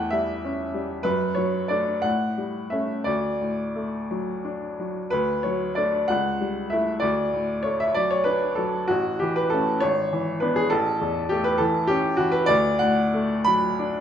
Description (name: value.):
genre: classical, romantic character piece for solo piano.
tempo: 57-68 BPM (dotted quarters).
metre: 6/8.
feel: rubato.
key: D major.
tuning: A4 = 440 Hz.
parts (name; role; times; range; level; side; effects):
bright upright piano; solo; 0.0-14.0 s; G#1 to B5; -22 LUFS; equal; none.
room: wet recital hall reverb, RT60 1.3 s.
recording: minimal, uncompressed stereo recording.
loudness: -21 LUFS.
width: side -9 dB against mid.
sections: 0.0-5.1 A section; 5.1-14.0 A section.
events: none.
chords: 0.0 A7/E; 1.1 D/F#; 2.0 A7; 3.1 D; 6.1 A7/C#; 7.0 D; 8.9 A; 9.8 E7/G#; 10.7 A; 12.5 D.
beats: 0.12 | 1.05 2.04 | 3.06 4.09 | 5.11 6.08 | 7.01 7.95 | 8.88 9.80 | 10.70 11.60 | 12.48 13.46.